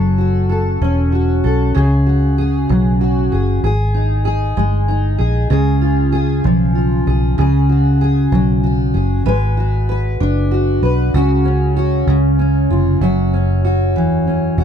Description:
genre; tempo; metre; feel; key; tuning
six-eight pop ballad; 64 BPM (dotted quarters); 6/8; straight; unclear; A4 = 440 Hz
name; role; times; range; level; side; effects
fingerpicked steel-string acoustic guitar; accompaniment; 0.0-14.6 s; F#2 to B4; -16 LUFS; equal; double-tracked left and right
vintage muted fingered electric bass; bass; 0.0-14.6 s; E1 to C#2; -16 LUFS; equal; none
room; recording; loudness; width
little or no reverb; dry, close 1970s-style studio recording; -13 LUFS; side -8 dB against mid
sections
0.0-14.6 A section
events
none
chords
0.0 F#m; 1.8 C#7sus4; 3.6 G#5; 5.5 C#; 7.4 C#sus4; 9.3 G#m7b5; 11.1 C#sus4; 12.1 C#; 13.0 F#5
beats
0.82 | 1.76 2.70 | 3.63 4.57 | 5.51 6.45 | 7.39 8.33 | 9.27 10.20 | 11.14 12.08 | 13.02 13.95

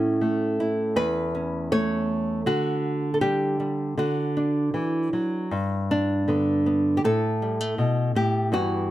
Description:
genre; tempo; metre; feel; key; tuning
folk, solo fingerstyle acoustic guitar; 80 BPM; 4/4; rubato; G major; A4 = 440 Hz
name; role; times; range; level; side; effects
nylon-string guitar; solo; 0.0-8.9 s; E2 to C#5; -22 LUFS; equal; none
room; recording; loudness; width
light reverb; close, detailed microphones; -22 LUFS; side -14 dB against mid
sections
0.0-5.5 A section; 5.5-8.9 B section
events
none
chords
0.0 A; 2.5 G5/D; 4.0 D; 5.5 G; 7.0 Gadd9/A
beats
0.22 0.97 1.71 | 2.45 3.20 3.96 4.74 | 5.51 6.27 7.03 7.78 | 8.52

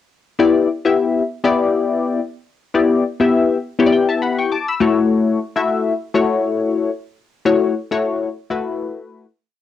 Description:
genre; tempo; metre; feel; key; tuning
funk; 102 BPM; 4/4; swing 56% on 16ths; E dorian; A4 = 440 Hz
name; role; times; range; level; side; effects
funky polysynth comp; solo; 0.4-9.3 s; A3 to E6; -15 LUFS; left 4 dB; chorus, phaser, cassette tape
room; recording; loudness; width
moderate studio reverb, RT60 0.6 s; home recording on cassette; -16 LUFS; side -11 dB against mid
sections
0.4-9.6 breakdown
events
fade-out 7.5-9.6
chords
0.4 Em7; 4.8 F#m7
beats
| 0.40 0.98 1.57 2.16 | 2.75 3.34 3.92 4.51 | 5.10 5.69 6.28 6.87 | 7.45 8.04 8.63 9.22

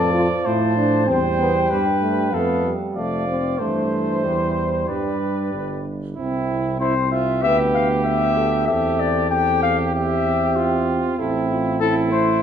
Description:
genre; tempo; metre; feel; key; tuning
classical, brass quintet; 96 BPM; 4/4; straight; C major; A4 = 440 Hz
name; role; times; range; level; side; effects
mellow trumpet; melody; 0.0-12.4 s; A4 to A5; -23 LUFS; left 5 dB; none
clear flugelhorn; second line; 0.0-12.4 s; E4 to D5; -25 LUFS; right 5 dB; none
clear trombone; accompaniment; 0.0-12.4 s; E3 to C4; -26 LUFS; right 2 dB; none
warm French horn; accompaniment; 0.0-12.4 s; G3 to B4; -25 LUFS; left 2 dB; none
warm tuba; bass; 0.0-12.4 s; F1 to A2; -24 LUFS; right 2 dB; none
room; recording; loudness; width
wet recital hall reverb, RT60 1.5 s; minimal, uncompressed stereo recording; -18 LUFS; side -8 dB against mid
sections
0.0-6.2 A section; 6.2-12.4 B section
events
none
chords
0.0 F; 1.1 C/E; 2.3 F; 3.6 C/G; 4.9 G; 6.2 C; 7.4 G/D; 8.7 C/E; 11.2 Am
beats
0.46 | 1.08 1.71 2.33 2.96 | 3.60 4.24 4.89 5.53 | 6.17 6.81 7.43 8.06 | 8.69 9.31 9.94 10.57 | 11.20 11.82

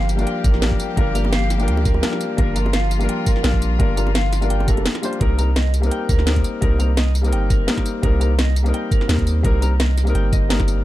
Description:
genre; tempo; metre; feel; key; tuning
liquid drum and bass; 170 BPM; 4/4; swing 54% on 16ths; C minor; A4 = 440 Hz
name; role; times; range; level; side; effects
clear studio string section; sustained chords; 0.0-5.2 s; F3 to G4; -28 LUFS; left 1 dB; sidechain pumping
electric guitar at the edge of break-up; arpeggios; 0.0-10.7 s; Bb4 to Bb5; -30 LUFS; right 2 dB; wide subtle chorus, dub echo
long sustained 808-style bass; bass; 0.0-10.8 s; F1 to Eb2; -19 LUFS; equal; tube saturation
drum and bass drum kit; drums; 0.1-10.8 s; hi-hat, snare drum, tambourine; -25 LUFS; equal; none
warm concert grand piano; accompaniment; 0.2-10.8 s; G3 to C5; -25 LUFS; left 4 dB; tape echo
electronic kick drum; drums; 0.4-10.7 s; none; -19 LUFS; equal; none
bongos; percussion; 1.2-4.8 s; none; -34 LUFS; right 2 dB; none
room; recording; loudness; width
little or no reverb; dark, warm production; -16 LUFS; side -15 dB against mid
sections
0.0-5.2 A section; 5.2-10.8 A section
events
drop 0.0-5.2, 5.2-10.8; break 4.9-5.2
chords
0.0 Gm7; 5.2 Cm7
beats
0.27 0.62 | 0.97 1.33 1.68 2.03 | 2.38 2.74 3.09 3.44 | 3.80 4.15 4.50 4.86 | 5.21 5.56 5.92 6.27 | 6.62 6.97 7.33 7.68 | 8.03 8.38 8.74 9.09 | 9.44 9.80 10.15 10.50

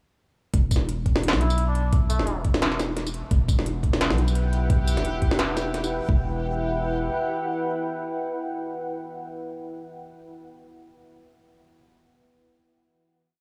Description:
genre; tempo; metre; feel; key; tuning
half-time drum and bass; 173 BPM; 4/4; swing 56% on 16ths, half-time; E minor; A4 = 438 Hz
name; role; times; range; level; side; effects
long sustained 808-style bass; bass; 0.5-7.1 s; E1 to B1; -28 LUFS; equal; none
electronic kick drum; drums; 0.5-6.2 s; none; -23 LUFS; equal; none
industrial drum kit; drums; 0.5-5.9 s; hi-hat, snare drum, tambourine; -29 LUFS; equal; none
trumpet with cup mute; melody; 1.4-2.4 s; A3 to E4; -35 LUFS; equal; digital delay
deep dark ambient pad; sustained chords; 3.8-9.6 s; E4 to G5; -32 LUFS; equal; chorus, built-in reverb, vintage 12-bit sampler grit, sidechain pumping
backwards swelling texture; texture; 4.2-6.1 s; G4; -40 LUFS; equal; built-in reverb
room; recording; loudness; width
light reverb, digital ambience; small room reverb; -24 LUFS; mono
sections
0.5-6.1 drop; 6.1-8.9 final chord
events
drop 0.5-6.1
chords
0.5 Emadd9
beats
| 0.54 0.89 1.23 1.58 | 1.93 2.27 2.62 2.97 | 3.31 3.66 4.01 4.35 | 4.70 5.05 5.39 5.74 | 6.09 6.43 6.78 7.13 | 7.47 7.82 8.17 8.52

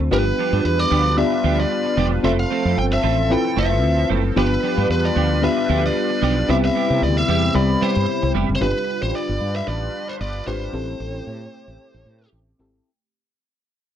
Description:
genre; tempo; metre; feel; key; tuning
pop; 113 BPM; 4/4; swing 55% on 16ths; unclear; A4 = 445 Hz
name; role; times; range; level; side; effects
mellow FM electric piano; accompaniment; 0.0-12.9 s; G3 to B5; -23 LUFS; left 4 dB; chorus, tube saturation
clean electric guitar; riff; 0.0-8.5 s; F3 to A4; -26 LUFS; right 13 dB; analog chorus, slapback echo
woody fretless electric bass; bass; 0.0-12.8 s; E1 to C3; -21 LUFS; equal; none
biting lead guitar; melody; 0.1-12.3 s; B4 to G5; -23 LUFS; equal; overdrive, slapback echo
sweeping resonant pad; sustained chords; 0.1-12.8 s; C3 to B4; -28 LUFS; right 3 dB; chorus
room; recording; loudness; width
little or no reverb; dry, close 1970s-style studio recording; -17 LUFS; side -10 dB against mid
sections
0.0-8.6 A section; 8.6-12.9 B section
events
fade-out 8.6-12.9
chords
0.1 G7; 2.2 Fmaj7; 4.4 G7; 6.5 Cmaj7; 8.6 G7; 10.7 Am7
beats
| 0.12 0.65 1.18 1.71 | 2.24 2.77 3.30 3.83 | 4.36 4.89 5.42 5.96 | 6.49 7.02 7.55 8.08 | 8.61 9.14 9.67 10.20 | 10.73 11.27 11.80 12.33

